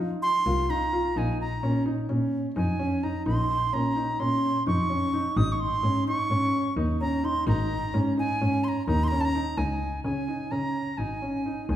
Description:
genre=progressive instrumental, band music in an uneven meter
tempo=257 BPM (eighths)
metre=9/8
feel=straight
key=Db major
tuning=A4 = 442 Hz
part: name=dark concert grand piano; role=arpeggios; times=0.0-11.8 s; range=Db4 to F4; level=-29 LUFS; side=equal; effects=none
part: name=clear double bass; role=bass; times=0.0-11.8 s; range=Ab1 to F3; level=-28 LUFS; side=equal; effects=none
part: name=bright wooden flute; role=melody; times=0.2-11.8 s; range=Ab5 to Eb6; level=-29 LUFS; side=right 2 dB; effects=none
room=wet recital hall reverb, RT60 1.6 s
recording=recorded in a church or concert hall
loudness=-24 LUFS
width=side -11 dB against mid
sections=0.0-9.6 A section; 9.6-11.8 B section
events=flute solo 0.0-9.6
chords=0.0 F5; 1.2 Bbmadd9; 5.4 Dbsus2

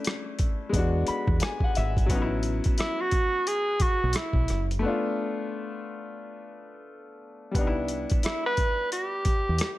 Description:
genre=R&B, neo-soul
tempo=88 BPM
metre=4/4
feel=swing 64% on 16ths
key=unclear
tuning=A4 = 436 Hz
part: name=bright upright piano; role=accompaniment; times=0.0-9.8 s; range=F#3 to B5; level=-31 LUFS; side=left 3 dB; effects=none
part: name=boom bap sampler-style drum kit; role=drums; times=0.0-9.8 s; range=hi-hat, kick drum, rim click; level=-26 LUFS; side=equal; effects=none
part: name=deep dub fingered electric bass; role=bass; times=0.7-9.6 s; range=F#1 to E2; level=-28 LUFS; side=equal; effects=none
part: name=breathy tenor saxophone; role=melody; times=2.8-9.8 s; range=E4 to B4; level=-27 LUFS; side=right 1 dB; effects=slapback echo
room=studio reverb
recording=none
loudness=-24 LUFS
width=side -17 dB against mid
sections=0.0-9.8 A section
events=upright piano fill 0.7-2.1; break 4.8-7.5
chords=0.0 Bm11 (rootless); 0.7 E7; 2.1 A69; 4.8 Bm7b5/A; 7.5 Cmaj7

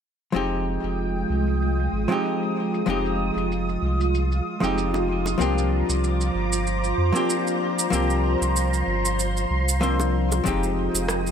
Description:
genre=sunset chillout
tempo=95 BPM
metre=4/4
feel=swing 55% on 16ths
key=F dorian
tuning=A4 = 445 Hz
part: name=hollow-body jazz guitar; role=accompaniment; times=0.3-11.3 s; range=F3 to C5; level=-26 LUFS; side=moving between left 5 dB and right 5 dB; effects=auto-pan, ping-pong delay
part: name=soft string machine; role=sustained chords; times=0.6-11.3 s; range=Ab3 to Eb6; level=-26 LUFS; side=equal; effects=phaser, ensemble chorus
part: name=warm sub bass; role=bass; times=0.3-11.3 s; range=F1 to F2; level=-25 LUFS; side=equal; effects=tube saturation
part: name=electronic shaker and rim click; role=drums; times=0.4-11.3 s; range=none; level=-29 LUFS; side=right 4 dB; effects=overdrive, low-pass filter on perc, low-pass filter on snare, low-pass filter on room
part: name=bongos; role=percussion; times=4.9-5.4, 10.0-10.4 s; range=none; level=-36 LUFS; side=right 1 dB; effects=none
part: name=electronic kick drum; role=drums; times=10.5-10.6 s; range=none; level=-29 LUFS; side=equal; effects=overdrive
room=light reverb, digital ambience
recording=none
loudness=-21 LUFS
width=side -8 dB against mid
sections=0.3-10.5 A section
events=filter sweep on sub bass 0.3-10.5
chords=0.3 Fm9; 5.4 C9sus4; 10.5 Fm9

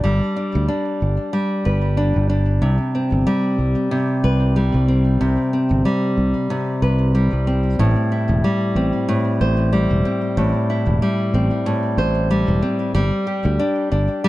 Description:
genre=folktronica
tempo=93 BPM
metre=4/4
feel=swing 56% on 16ths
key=A minor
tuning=A4 = 439 Hz
part: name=nylon-string guitar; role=arpeggios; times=0.0-14.3 s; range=A2 to C5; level=-19 LUFS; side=equal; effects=vintage 12-bit sampler grit, digital delay
part: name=fingered electric bass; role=bass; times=0.0-14.1 s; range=E1 to D2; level=-18 LUFS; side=equal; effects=none
room=light reverb, small room ambience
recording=none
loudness=-16 LUFS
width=side -17 dB against mid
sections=0.0-7.8 A section; 7.8-14.3 B section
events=none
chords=0.0 G; 2.6 C5; 7.8 Am7; 12.9 G5

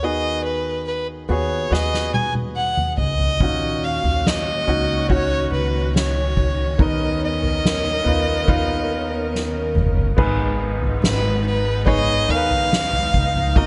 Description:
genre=pop ballad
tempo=71 BPM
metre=4/4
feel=straight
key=unclear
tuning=A4 = 440 Hz
part: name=dark violin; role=melody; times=0.0-13.7 s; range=Cb5 to Ab5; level=-25 LUFS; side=equal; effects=delay
part: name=clear baby grand piano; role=accompaniment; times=0.0-13.7 s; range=Ab2 to Db5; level=-28 LUFS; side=equal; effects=none
part: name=upright bass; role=bass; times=0.0-13.7 s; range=F#1 to Eb2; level=-26 LUFS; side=equal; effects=none
part: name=soft-mallet drum kit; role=drums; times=1.7-13.7 s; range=crash cymbal, kick drum, snare drum, toms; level=-24 LUFS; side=equal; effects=none
part: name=warm studio string section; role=sustained chords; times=3.4-13.7 s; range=Bb2 to A#4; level=-31 LUFS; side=equal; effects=none
room=little or no reverb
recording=nothing above 11.0 kHz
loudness=-20 LUFS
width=mono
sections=0.0-10.2 A section; 10.2-13.7 B section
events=drum fill 1.7-3.4, 9.3-10.2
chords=0.0 Abm7/Eb; 3.4 Ebm7; 6.8 Bmaj7/D#; 10.2 Abm

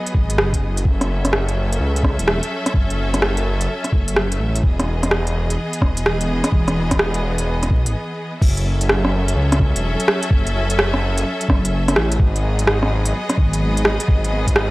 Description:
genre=future garage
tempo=127 BPM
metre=4/4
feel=swing 64% on 16ths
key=F# dorian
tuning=A4 = 441 Hz
part: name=bright studio string section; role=sustained chords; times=0.0-14.7 s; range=E3 to E5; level=-24 LUFS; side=left 1 dB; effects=sidechain pumping
part: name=swelling detuned saw bass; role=bass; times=0.1-14.7 s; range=E1 to C#2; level=-20 LUFS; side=equal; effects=sidechain pumping
part: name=electronic kick drum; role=drums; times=0.1-14.5 s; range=none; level=-17 LUFS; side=equal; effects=none
part: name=organic electronic drum kit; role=drums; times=0.1-14.7 s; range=crash cymbal, hi-hat, rim click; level=-20 LUFS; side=equal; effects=overdrive
room=little or no reverb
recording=dry, gritty hardware recording, vinyl crackle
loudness=-16 LUFS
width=side -20 dB against mid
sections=0.0-8.4 A section; 8.4-14.7 B section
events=break 7.9-8.4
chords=0.0 G#m7; 0.9 F#m7; 4.6 Emaj7; 8.4 F#m7; 12.2 G#m7

